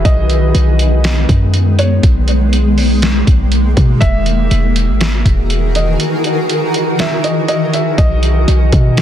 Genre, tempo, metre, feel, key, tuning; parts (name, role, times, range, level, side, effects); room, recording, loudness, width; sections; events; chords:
hip hop, atmospheric cloud-rap; 121 BPM; 4/4; half-time; B major; A4 = 440 Hz
felt-muted upright piano; melody; 0.0-9.0 s; C#5 to E5; -22 LUFS; right 1 dB; low-pass filter, digital delay
shimmering ambient pad; sustained chords; 0.0-9.0 s; D#3 to A#4; -16 LUFS; equal; chorus, built-in reverb, sidechain pumping
warm 808-style bass; bass; 0.0-9.0 s; E1 to B2; -12 LUFS; equal
trip hop sampler-style drum kit; drums; 0.1-9.0 s; hi-hat, kick drum, snare drum; -15 LUFS; equal
little or no reverb; dense, heavily limited modern master; -10 LUFS; side -10 dB against mid
0.0-8.0 A section; 8.0-9.0 B section
kick muted 6.0-8.0
0.1 B6; 4.0 Emaj9#11; 8.0 B6